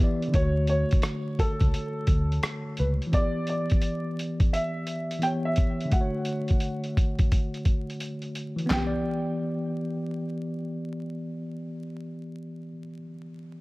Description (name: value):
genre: lo-fi hip hop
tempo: 86 BPM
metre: 4/4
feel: swing 64% on 16ths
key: E dorian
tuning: A4 = 440 Hz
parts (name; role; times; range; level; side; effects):
- warm upright piano; melody; 0.0-12.9 s; A4 to G5; -32 LUFS; equal; low-pass filter
- mellow tine electric piano; accompaniment; 0.0-13.6 s; D3 to D5; -30 LUFS; equal; medium stereo tremolo, cassette tape, low-pass filter
- lo-fi sampler-style drum kit; drums; 0.2-8.9 s; handclaps, hi-hat, kick drum, rim click, snare drum, toms; -24 LUFS; equal; none
- vintage muted fingered electric bass; bass; 0.3-3.0 s; C#2 to D2; -25 LUFS; equal; none
room: digital ambience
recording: vinyl crackle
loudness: -25 LUFS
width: side -22 dB against mid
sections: 0.0-8.7 A section; 8.7-11.5 B section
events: none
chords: 0.3 Dmaj7; 3.1 Em7; 5.9 Dmaj7; 8.7 Em7